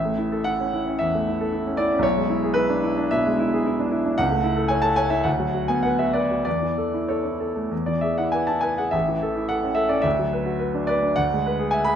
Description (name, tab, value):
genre	classical, romantic character piece for solo piano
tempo	93-119 BPM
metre	4/4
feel	rubato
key	A major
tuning	A4 = 438 Hz
part	bright grand piano	solo	0.0-12.0 s	A1 to B5	-20 LUFS	equal	none
room	wet recital hall reverb, RT60 1.3 s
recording	none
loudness	-20 LUFS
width	side -8 dB against mid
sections	0.0-12.0 A section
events	none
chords	0.0 A; 2.0 E7/B; 4.2 A/C#; 5.3 Bm/D; 6.5 A/E; 7.7 E; 8.9 A; 10.0 Bm/D; 11.2 E7/D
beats	0.47 1.00 1.53 | 2.03 2.55 3.12 3.65 | 4.19 4.71 5.26 5.84 | 6.45 7.08 7.71 8.33 | 8.94 9.50 10.05 10.61 | 11.17 11.72